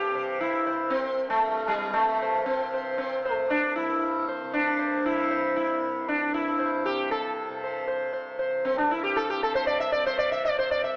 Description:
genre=indian classical, Hindustani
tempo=117 BPM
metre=4/4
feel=straight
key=C raga bhupali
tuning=A4 = 440 Hz
part: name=sitar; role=melody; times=0.0-11.0 s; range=G3 to E5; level=-24 LUFS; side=equal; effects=none
part: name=tanpura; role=drone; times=0.0-11.0 s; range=C2 to C3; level=-35 LUFS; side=equal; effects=none
room=moderate recital hall reverb, RT60 1.6 s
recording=AM radio sound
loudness=-24 LUFS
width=side -32 dB against mid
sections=0.0-11.0 A section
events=none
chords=none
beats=0.41 | 0.92 1.44 1.96 2.47 | 2.99 3.51 4.02 4.54 | 5.05 5.57 6.08 6.60 | 7.11 7.62 8.14 8.65 | 9.16 9.68 10.19 10.70

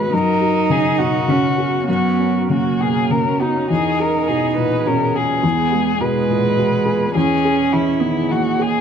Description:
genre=neoclassical piano and strings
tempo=98-107 BPM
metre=3/4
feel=rubato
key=unclear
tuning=A4 = 440 Hz
part: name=muted violin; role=melody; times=0.0-8.8 s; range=D#4 to B4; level=-20 LUFS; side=left 4 dB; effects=none
part: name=muted cello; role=second line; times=0.0-8.8 s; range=G#3 to D#4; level=-20 LUFS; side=right 8 dB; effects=none
part: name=felt-muted upright piano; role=accompaniment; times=0.0-8.8 s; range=E2 to G#4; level=-20 LUFS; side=left 4 dB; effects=none
part: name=evolving wavetable pad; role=sustained chords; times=0.0-8.8 s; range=G#3 to A#4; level=-30 LUFS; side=right 1 dB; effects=phaser, built-in reverb
room=light reverb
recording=close, detailed microphones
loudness=-15 LUFS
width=side -7 dB against mid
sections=0.0-8.8 A section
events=none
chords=0.1 F#; 3.7 E; 7.1 C#m/E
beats=| 0.12 0.69 1.28 | 1.88 2.49 3.10 | 3.70 4.28 4.86 | 5.43 6.00 6.57 | 7.15 7.72 8.30

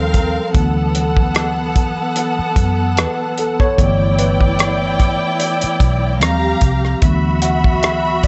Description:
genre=lush 1970s-style soul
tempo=74 BPM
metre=4/4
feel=swing 54% on 16ths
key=D major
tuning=A4 = 440 Hz
part: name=rich symphonic string section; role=second line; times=0.0-8.3 s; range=B3 to B5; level=-22 LUFS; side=equal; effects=none
part: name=mellow tine electric piano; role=accompaniment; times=0.0-8.3 s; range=E3 to F#5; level=-22 LUFS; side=equal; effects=none
part: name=vintage muted fingered electric bass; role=bass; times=0.0-8.3 s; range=G1 to F#2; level=-22 LUFS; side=equal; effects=none
part: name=cloth-damped thuddy drum kit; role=drums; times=0.1-8.3 s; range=hi-hat, kick drum, rim click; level=-18 LUFS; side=equal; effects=none
room=light reverb, studio reverb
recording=nothing above 8.0 kHz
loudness=-16 LUFS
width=mono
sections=0.0-8.3 A section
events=tine electric piano solo 0.0-8.3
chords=0.0 Eb69; 0.5 D69; 3.8 G6; 6.2 Eb69; 7.0 D69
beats=| 0.55 1.36 2.17 2.98 | 3.79 4.59 5.40 6.21 | 7.02 7.83

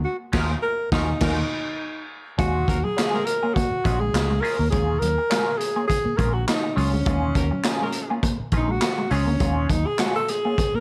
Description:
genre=funk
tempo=102 BPM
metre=4/4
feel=swing 56% on 16ths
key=Eb minor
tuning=A4 = 440 Hz
part: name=breathy alto saxophone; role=melody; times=0.0-10.8 s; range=Db4 to Bb4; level=-28 LUFS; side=equal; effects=none
part: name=fingered electric bass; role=bass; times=0.0-10.8 s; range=Bb1 to Eb2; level=-27 LUFS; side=equal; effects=none
part: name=warm horn section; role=second line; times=0.3-3.3, 7.4-8.2 s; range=Bb3 to Bb4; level=-37 LUFS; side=equal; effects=none
part: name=semi-hollow electric guitar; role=accompaniment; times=0.3-10.6 s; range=Gb3 to Ab4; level=-34 LUFS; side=equal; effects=wah
part: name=raw garage drum kit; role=drums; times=0.3-10.7 s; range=crash cymbal, handclaps, hi-hat, kick drum, snare drum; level=-28 LUFS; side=equal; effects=none
part: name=mellow electric guitar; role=riff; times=2.4-10.8 s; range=Gb3 to Bb3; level=-33 LUFS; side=equal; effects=none
room=light reverb, studio reverb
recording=none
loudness=-23 LUFS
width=mono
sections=0.0-2.4 A section; 2.4-10.8 B section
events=band accent 0.0-2.4; alto saxophone solo 2.4-10.8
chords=0.0 Ebm11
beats=| 0.04 0.63 1.21 1.80 | 2.38 2.97 3.56 4.14 | 4.73 5.31 5.90 6.48 | 7.07 7.66 8.24 8.82 | 9.41 10.00 10.58

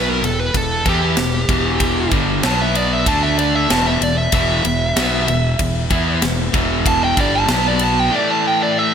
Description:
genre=hard rock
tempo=95 BPM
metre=4/4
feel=straight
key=E minor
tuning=A4 = 439 Hz
part: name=dark smooth lead guitar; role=melody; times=0.0-8.9 s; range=G4 to A5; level=-19 LUFS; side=right 2 dB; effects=overdrive, ping-pong delay
part: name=cranked stack guitar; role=riff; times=0.0-8.9 s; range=E2 to E4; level=-21 LUFS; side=left 10 dB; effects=overdrive
part: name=distorted electric guitar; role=riff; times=0.0-8.9 s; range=E2 to E4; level=-23 LUFS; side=right 12 dB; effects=distortion
part: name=fuzz fingered electric bass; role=bass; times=0.0-8.1 s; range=E1 to E2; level=-22 LUFS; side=right 1 dB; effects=overdrive
part: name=tight metal drum kit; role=drums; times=0.2-7.9 s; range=kick drum, ride cymbal, snare drum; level=-21 LUFS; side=equal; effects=gated reverb
room=moderate lush hall reverb, RT60 2.4 s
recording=bright 1980s-style digital production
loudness=-14 LUFS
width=side -8 dB against mid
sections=0.0-8.9 A section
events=lead electric guitar solo 0.0-8.9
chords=0.0 Em; 2.4 B5; 3.1 D5; 3.7 Em; 7.5 B5; 8.1 A5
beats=0.54 1.17 | 1.80 2.43 3.06 3.69 | 4.33 4.96 5.59 6.22 | 6.86 7.49 8.12 8.75

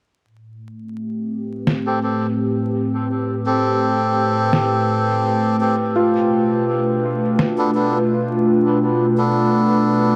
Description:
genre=ambient dub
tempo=84 BPM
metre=4/4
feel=swing 53% on 16ths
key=A minor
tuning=A4 = 440 Hz
part: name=warbly tape-like pad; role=sustained chords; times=0.3-10.2 s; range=A2 to B4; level=-21 LUFS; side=equal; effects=chorus, built-in reverb
part: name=electronic snare drum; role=drums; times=1.7-7.5 s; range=none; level=-22 LUFS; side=equal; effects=none
part: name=melodica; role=stabs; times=1.9-10.2 s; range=B3 to A4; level=-24 LUFS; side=equal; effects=low-pass filter, dub echo
part: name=felt-muted upright piano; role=arpeggios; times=6.0-10.2 s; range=F4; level=-25 LUFS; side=equal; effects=dub echo
room=moderate huge ambient reverb, RT60 4.4 s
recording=vinyl crackle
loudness=-19 LUFS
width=mono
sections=0.2-10.2 A section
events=none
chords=0.2 Am7; 6.0 Bm7b5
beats=| 0.25 0.96 1.68 2.39 | 3.10 3.82 4.53 5.25 | 5.96 6.68 7.39 8.11 | 8.82 9.53

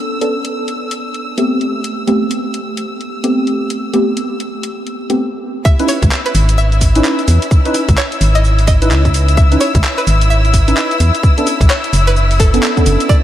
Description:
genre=UK garage, two-step garage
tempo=129 BPM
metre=4/4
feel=swing 61% on 16ths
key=unclear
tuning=A4 = 440 Hz
part: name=rich studio violin section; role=sustained chords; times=0.0-13.2 s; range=E4 to E6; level=-22 LUFS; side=left 2 dB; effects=sidechain pumping
part: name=deep mellow chord stab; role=stabs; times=0.0-13.2 s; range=A3 to B4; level=-18 LUFS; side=right 1 dB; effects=chorus, diffuse ambient delay
part: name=garage drum kit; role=drums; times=0.2-13.2 s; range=cabasa, handclaps, hi-hat, rim click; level=-21 LUFS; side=equal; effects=none
part: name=string-like resonator pluck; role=melody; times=5.6-13.2 s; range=A4 to E5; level=-22 LUFS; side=right 1 dB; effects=chorus, diffuse ambient delay
part: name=electronic kick drum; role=drums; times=5.7-13.2 s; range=none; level=-12 LUFS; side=equal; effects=none
part: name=organ-like FM bass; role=bass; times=6.0-13.0 s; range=F#1 to E2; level=-12 LUFS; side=equal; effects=none
room=moderate cathedral reverb, RT60 6.6 s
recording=dreamy mix soaked in reverb, vinyl crackle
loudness=-11 LUFS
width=side -12 dB against mid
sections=0.0-5.7 A section; 5.7-13.2 B section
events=drop 5.7-13.2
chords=0.0 Bm9; 1.0 Am9; 5.7 C#m9; 11.2 Bm9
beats=| 0.07 0.54 1.00 1.47 | 1.93 2.40 2.86 3.33 | 3.79 4.26 4.72 5.19 | 5.65 6.12 6.58 7.05 | 7.51 7.98 8.44 8.91 | 9.37 9.84 10.30 10.77 | 11.23 11.70 12.16 12.63 | 13.09

